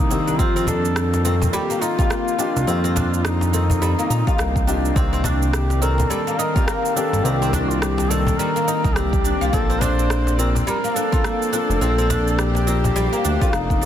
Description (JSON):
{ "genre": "organic downtempo", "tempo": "105 BPM", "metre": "4/4", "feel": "swing 59% on 16ths", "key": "C dorian", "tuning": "A4 = 441 Hz", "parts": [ { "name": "mellow duduk", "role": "melody", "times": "0.0-13.9 s", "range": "Eb4 to C5", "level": "-25 LUFS", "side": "equal", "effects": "digital delay" }, { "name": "felt-muted upright piano", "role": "accompaniment", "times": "0.0-13.9 s", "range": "Eb3 to D5", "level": "-28 LUFS", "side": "left 5 dB", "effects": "sidechain pumping, ping-pong delay" }, { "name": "bowed-like drone", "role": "sustained chords", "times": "0.0-13.9 s", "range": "Eb3 to D5", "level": "-29 LUFS", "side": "left 1 dB", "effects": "built-in reverb, sidechain pumping" }, { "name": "smooth synth bass", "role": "bass", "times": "0.0-13.9 s", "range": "F1 to Bb2", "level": "-21 LUFS", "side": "equal", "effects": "sidechain pumping" }, { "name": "oud", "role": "arpeggios", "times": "0.1-13.9 s", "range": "G3 to F4", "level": "-25 LUFS", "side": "equal", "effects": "ping-pong delay" }, { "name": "electronic shaker and rim click", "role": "drums", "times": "0.1-13.9 s", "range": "none", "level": "-29 LUFS", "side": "right 4 dB", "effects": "small room ambience, soft clipping on snare" }, { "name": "electronic kick drum", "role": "drums", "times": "0.4-13.8 s", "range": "none", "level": "-20 LUFS", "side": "equal", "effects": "small room ambience" }, { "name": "cajon", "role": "percussion", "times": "0.7-12.9 s", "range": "none", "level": "-27 LUFS", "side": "left 1 dB", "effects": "none" } ], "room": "light reverb", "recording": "dense, heavily limited modern master", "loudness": "-17 LUFS", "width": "side -10 dB against mid", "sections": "0.0-13.9 A section", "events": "none", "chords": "0.4 F7sus4; 5.0 Cm9; 9.5 Bbmaj9", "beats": "| 0.39 0.96 1.53 2.10 | 2.67 3.25 3.82 4.39 | 4.96 5.53 6.10 6.67 | 7.25 7.82 8.39 8.96 | 9.53 10.10 10.68 11.25 | 11.82 12.39 12.96 13.53" }